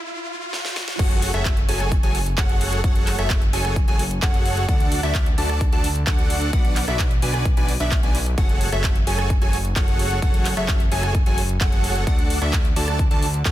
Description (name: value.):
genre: EDM, festival progressive house.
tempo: 130 BPM.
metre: 4/4.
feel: straight.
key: F# minor.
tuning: A4 = 440 Hz.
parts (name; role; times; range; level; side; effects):
riser; sound effects; 0.0-1.0 s; none; -30 LUFS; equal; none.
big-room dance drum kit; drums; 0.5-13.5 s; crash cymbal, handclaps, hi-hat, rim click, snare drum; -28 LUFS; equal; high-pass filter on snare, high-pass filter on hats, high-pass filter on cymbals, high-pass filter on room.
plucky unison lead; arpeggios; 1.0-13.5 s; E5 to A5; -30 LUFS; equal; lush chorus, sidechain pumping, ping-pong delay.
dense compressed supersaw; riff; 1.0-13.5 s; D4 to A5; -26 LUFS; right 1 dB; sidechain pumping, ping-pong delay.
fat analog bass; bass; 1.0-13.5 s; F#1 to D2; -24 LUFS; equal; sidechain pumping, high-pass filter.
electronic kick drum; drums; 1.0-13.5 s; none; -20 LUFS; equal; high-pass filter on kick, high-pass filter on room.
room: little or no reverb.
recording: dense, heavily limited modern master, high-pass filter.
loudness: -18 LUFS.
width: side -14 dB against mid.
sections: 1.0-13.5 A section.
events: break 0.0-1.0; riser 0.0-1.0; drum fill 0.5-1.0; drop 1.0-13.5.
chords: 0.0 N.C.; 1.0 F#madd9; 4.7 D; 6.5 Bm; 8.4 F#madd9; 12.1 D.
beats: 0.07 0.53 | 0.99 1.46 1.92 2.38 | 2.84 3.30 3.76 4.22 | 4.68 5.15 5.61 6.07 | 6.53 6.99 7.46 7.92 | 8.38 8.84 9.30 9.76 | 10.22 10.69 11.15 11.61 | 12.07 12.53 12.99 13.46.